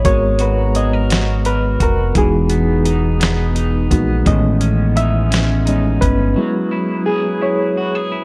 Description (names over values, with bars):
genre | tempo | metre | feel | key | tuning
slow six-eight R&B | 57 BPM (dotted quarters) | 6/8 | straight | G# minor | A4 = 439 Hz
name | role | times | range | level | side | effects
electric guitar at the edge of break-up | second line | 0.0-8.2 s | A2 to A#4 | -25 LUFS | equal | harmonic tremolo
barky reed electric piano | accompaniment | 0.0-8.2 s | D#3 to E5 | -21 LUFS | equal | overdrive, fast tremolo
hollow soft pad | sustained chords | 0.4-8.2 s | E3 to A#5 | -26 LUFS | equal | chorus
dusty soul sampler-style drum kit | drums | 0.0-6.2 s | hi-hat, kick drum, snare drum | -21 LUFS | equal | none
deep dub fingered electric bass | bass | 0.1-6.3 s | E1 to A#1 | -20 LUFS | equal | none
room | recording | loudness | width
little or no reverb | dark, warm production | -16 LUFS | mono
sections
0.0-8.2 A section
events
reed electric piano solo 0.0-8.2; break 6.4-8.2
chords
0.0 G#m9; 2.2 Emaj7; 4.3 Amaj9#11; 6.4 F#9sus4